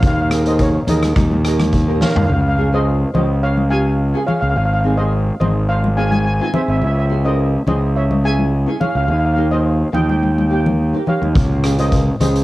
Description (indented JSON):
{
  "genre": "calypso",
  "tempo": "106 BPM",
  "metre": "4/4",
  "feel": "straight",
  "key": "unclear",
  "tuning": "A4 = 439 Hz",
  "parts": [
    { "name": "steel pan", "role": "melody", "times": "0.0-12.4 s", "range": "Bb4 to Ab5", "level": "-22 LUFS", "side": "equal", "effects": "cassette tape, tape echo" },
    { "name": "nylon-string guitar", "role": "accompaniment", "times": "0.0-12.4 s", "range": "Bb3 to Bb4", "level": "-23 LUFS", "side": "right 1 dB", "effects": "double-tracked left and right, cassette tape" },
    { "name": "fuzz fingered electric bass", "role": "bass", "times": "0.0-12.4 s", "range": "Ab1 to Eb2", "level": "-16 LUFS", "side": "equal", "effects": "overdrive" },
    { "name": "street-band drum kit", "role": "drums", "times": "0.0-2.3, 11.4-12.4 s", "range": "hi-hat, kick drum, rim click, snare drum, toms", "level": "-19 LUFS", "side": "equal", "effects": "none" },
    { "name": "congas", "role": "percussion", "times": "0.9-12.3 s", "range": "none", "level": "-20 LUFS", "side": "left 1 dB", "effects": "none" }
  ],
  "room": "light reverb",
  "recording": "home recording on cassette",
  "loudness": "-14 LUFS",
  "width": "side -17 dB against mid",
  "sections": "0.0-2.3 A section; 2.3-12.4 A section",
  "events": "drum fill 2.0",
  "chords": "0.0 Ebsus4; 1.2 Eb; 2.3 Db; 4.6 Ab; 6.8 Dbm; 9.1 Eb; 11.4 Db"
}